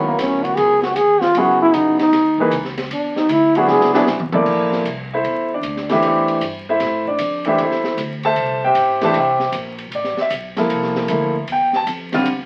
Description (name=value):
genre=modal jazz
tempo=154 BPM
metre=4/4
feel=swing 66% on 8ths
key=Eb phrygian, A phrygian from 4.5 s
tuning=A4 = 440 Hz
part: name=warm concert grand piano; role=accompaniment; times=0.0-12.3 s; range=Db3 to A5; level=-20 LUFS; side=equal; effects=none
part: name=upright bass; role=bass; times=0.0-12.5 s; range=A1 to A2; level=-34 LUFS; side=equal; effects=none
part: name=warm trombone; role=second line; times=0.1-4.0 s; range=Bb3 to G#4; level=-17 LUFS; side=equal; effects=none
part: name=open jazz drum kit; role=drums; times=0.2-12.4 s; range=crash cymbal, hi-hat, kick drum, ride cymbal, snare drum, toms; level=-30 LUFS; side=equal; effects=none
room=wet small room reverb, RT60 0.5 s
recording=very old 78 rpm record, vinyl crackle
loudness=-18 LUFS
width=mono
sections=0.0-4.5 A section; 4.5-12.5 A section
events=trombone solo 0.0-4.5; drum fill 3.7-4.5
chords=0.0 Ebm7; 2.9 E7; 4.5 Am7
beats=0.19 0.58 0.97 | 1.36 1.75 2.13 2.52 | 2.91 3.30 3.69 4.08 | 4.47 4.86 5.25 5.64 | 6.03 6.42 6.81 7.20 | 7.59 7.98 8.37 8.76 | 9.15 9.54 9.93 10.31 | 10.70 11.09 11.48 11.87 | 12.26